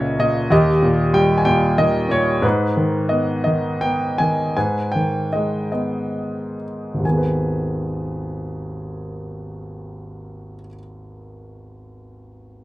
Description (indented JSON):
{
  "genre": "classical, lyrical solo piano",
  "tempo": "40-63 BPM (dotted quarters)",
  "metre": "6/8",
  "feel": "rubato",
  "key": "G# harmonic minor",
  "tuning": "A4 = 442 Hz",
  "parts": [
    { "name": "warm grand piano", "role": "solo", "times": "0.0-12.6 s", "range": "G#1 to G#5", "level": "-18 LUFS", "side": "equal", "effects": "none" }
  ],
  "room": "little or no reverb",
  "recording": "close, detailed microphones",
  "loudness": "-17 LUFS",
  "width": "side -16 dB against mid",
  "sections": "0.0-4.6 A section; 4.6-7.0 B section; 7.0-12.6 C section",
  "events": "slowing down 2.4-7.0",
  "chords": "0.0 A#dim/C#; 0.5 D#; 2.4 G#m"
}